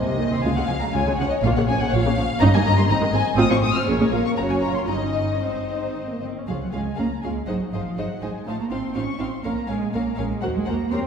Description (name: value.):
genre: quick classical-period movement for string orchestra.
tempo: 121 BPM.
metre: 2/4.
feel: rubato.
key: Db major.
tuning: A4 = 441 Hz.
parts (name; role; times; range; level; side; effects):
muted symphonic violin section; melody; 0.0-11.0 s; C5 to F6; -28 LUFS; left 4 dB; none.
muted symphonic violin section; second line; 0.0-11.0 s; Ab4 to Bb5; -30 LUFS; left 3 dB; none.
muted symphonic viola section; accompaniment; 0.0-11.0 s; C3 to Bb4; -26 LUFS; equal; none.
muted symphonic cello section; bass; 0.0-11.1 s; C2 to Db4; -26 LUFS; right 2 dB; none.
muted symphonic double bass section; bass; 0.0-11.0 s; Gb1 to E2; -27 LUFS; right 1 dB; none.
room: wet concert hall reverb, RT60 2.0 s.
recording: heard from further back in the room.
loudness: -20 LUFS.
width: side -7 dB against mid.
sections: 0.0-6.5 A section; 6.5-11.1 B section.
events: none.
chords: 0.4 Db; 1.4 Bbm; 2.4 Eb/G; 2.9 Ab5; 3.4 F7/A; 3.9 Bbm; 4.4 Gb5; 4.9 Eb7/G; 5.4 Ab; 6.5 Db; 7.5 Ab7; 8.5 F7/A; 9.4 Bbm; 10.4 Cm7b5/Eb (rootless).